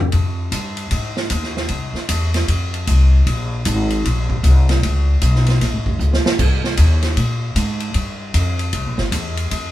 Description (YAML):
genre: jazz, big band swing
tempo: 154 BPM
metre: 4/4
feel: swing 64% on 8ths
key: F minor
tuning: A4 = 445 Hz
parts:
  - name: upright bass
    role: bass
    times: 0.1-9.7 s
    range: F1 to Bb2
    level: -16 LUFS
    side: left 1 dB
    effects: none
  - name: swinging big-band drum kit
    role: drums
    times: 0.1-9.6 s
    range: crash cymbal, hi-hat, kick drum, ride cymbal, snare drum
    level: -22 LUFS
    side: right 1 dB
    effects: none
room: moderate studio reverb, RT60 0.7 s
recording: band playing live in one room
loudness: -16 LUFS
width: side -14 dB against mid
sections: 0.1-9.7 A section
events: drum fill 6.0-6.4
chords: none